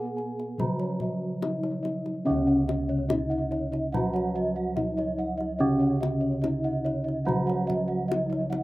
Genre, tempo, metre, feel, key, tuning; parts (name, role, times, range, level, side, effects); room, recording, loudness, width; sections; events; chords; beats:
Javanese gamelan; 72 BPM; 4/4; straight; C# slendro; A4 = 440 Hz
gamelan-type bronze metallophone; melody; 0.0-8.6 s; C#4 to G#4+20c; -31 LUFS; left 1 dB
gamelan-type bronze metallophone; accompaniment; 0.0-8.6 s; C#3 to B3-40c; -30 LUFS; right 2 dB
gamelan-type bossed gongs; arpeggios; 0.0-8.6 s; C#5 to G#5+20c; -36 LUFS; left 2 dB
gamelan-type bossed gongs; bass; 0.0-8.6 s; C#2 to B4-40c; -31 LUFS; equal
kendang; percussion; 0.2-8.6 s; -34 LUFS; left 4 dB
gamelan-type bronze metallophone; arpeggios; 2.3-8.6 s; C#5 to F#5-20c; -34 LUFS; right 3 dB
little or no reverb; recorded outdoors, with no room sound; -25 LUFS; side -18 dB against mid
0.0-2.3 A section; 2.3-8.6 A section
0.59 1.42 | 2.26 3.09 3.92 4.76 | 5.59 6.42 7.26 8.09